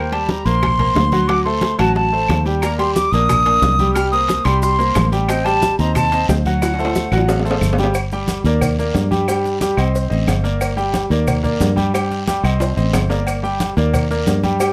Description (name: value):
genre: latin, salsa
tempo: 180 BPM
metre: 4/4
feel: straight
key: unclear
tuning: A4 = 439 Hz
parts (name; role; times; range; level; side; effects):
- silver concert flute; melody; 0.0-7.6 s; F#5 to F6; -21 LUFS; equal; none
- clear concert grand piano; accompaniment; 0.0-14.7 s; F#3 to G5; -23 LUFS; equal; none
- fingered electric bass; bass; 0.0-14.7 s; G1 to G2; -21 LUFS; equal; none
- congas; percussion; 0.1-14.7 s; none; -26 LUFS; equal; none
- timbales and agogo bells; percussion; 0.1-14.7 s; none; -29 LUFS; equal; none
- bongos and cowbell; percussion; 0.3-14.7 s; none; -29 LUFS; equal; none
- guiro; percussion; 0.3-14.7 s; none; -36 LUFS; equal; none
- claves; percussion; 0.6-14.7 s; none; -33 LUFS; equal; none
- maracas; percussion; 2.6-14.7 s; none; -38 LUFS; equal; none
room: light reverb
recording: close, detailed microphones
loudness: -17 LUFS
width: mono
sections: 0.0-8.0 A section; 8.0-14.7 B section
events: drum fill 6.6-8.0, 12.6-13.3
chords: 0.0 Eb6; 1.3 D7; 2.6 Ebmaj7; 4.0 Cm7; 5.3 Am7b5; 6.6 D7; 8.0 Gm; 8.6 Ebmaj7; 9.3 Cm; 10.6 Gm; 11.3 Ebmaj7; 11.9 Cm; 13.3 Gm; 13.9 Ebmaj7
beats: 0.29 0.63 0.96 | 1.30 1.63 1.96 2.30 | 2.63 2.96 3.29 3.63 | 3.96 4.29 4.63 4.96 | 5.29 5.62 5.96 6.29 | 6.62 6.96 7.29 7.62 | 7.95 8.29 8.62 8.95 | 9.28 9.62 9.95 10.28 | 10.61 10.95 11.28 11.61 | 11.94 12.28 12.61 12.94 | 13.27 13.60 13.94 14.27 | 14.60